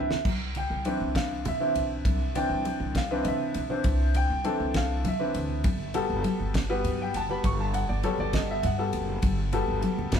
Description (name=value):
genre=electric jazz fusion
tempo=67 BPM (dotted quarters)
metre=6/8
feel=straight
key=C lydian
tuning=A4 = 440 Hz
part: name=clear baby grand piano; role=accompaniment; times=0.0-10.1 s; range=E3 to Db6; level=-28 LUFS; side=left 1 dB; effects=none
part: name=upright bass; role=bass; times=0.0-10.2 s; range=F1 to C3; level=-30 LUFS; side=equal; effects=none
part: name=damped 70s drum kit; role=drums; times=0.1-10.2 s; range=crash cymbal, kick drum, ride cymbal, snare drum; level=-32 LUFS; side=equal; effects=none
part: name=congas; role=percussion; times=0.1-10.1 s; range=none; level=-35 LUFS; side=left 1 dB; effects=none
room=moderate large studio reverb, RT60 1.2 s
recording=band playing live in one room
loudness=-25 LUFS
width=side -8 dB against mid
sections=0.3-10.2 A section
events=drum fill 0.0, 6.8-7.4; grand piano fill 0.0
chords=0.3 Cmaj9; 5.6 Gmaj9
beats=| 0.26 1.16 | 2.06 2.95 | 3.85 4.75 | 5.65 6.55 | 7.44 8.34 | 9.23 10.13